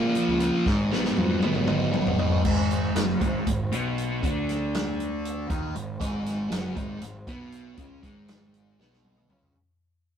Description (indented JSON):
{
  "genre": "psychedelic rock",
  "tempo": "236 BPM (eighths)",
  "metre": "7/8",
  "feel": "straight",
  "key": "G# dorian",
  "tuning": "A4 = 438 Hz",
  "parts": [
    { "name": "fuzz guitar", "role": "riff", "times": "0.0-9.6 s", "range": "F#2 to E#4", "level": "-26 LUFS", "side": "equal", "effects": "distortion, phaser" },
    { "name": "vintage drum kit", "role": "drums", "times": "0.1-9.5 s", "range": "crash cymbal, hi-hat, kick drum, snare drum, toms", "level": "-29 LUFS", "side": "left 1 dB", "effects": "none" },
    { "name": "fuzz fingered electric bass", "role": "bass", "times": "0.3-9.5 s", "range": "F#1 to E#2", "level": "-32 LUFS", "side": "equal", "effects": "overdrive" }
  ],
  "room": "light reverb",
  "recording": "rough rehearsal-room recording",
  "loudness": "-23 LUFS",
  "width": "side -8 dB against mid",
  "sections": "0.0-2.4 A section; 2.4-9.6 B section",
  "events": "drum fill 0.7-2.4, 8.8-9.6; fade-out 2.4-9.6",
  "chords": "0.0 C#6; 0.7 G#m7; 2.4 G#m",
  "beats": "0.15 0.41 | 0.67 0.92 1.18 1.43 1.68 1.94 2.19 | 2.45 2.70 2.96 3.21 3.46 3.72 3.97 | 4.23 4.48 4.73 4.99 5.24 5.49 5.75 | 6.00 6.25 6.51 6.76 7.02 7.27 7.52 | 7.78 8.03 8.28 8.54 8.79 9.04 9.30"
}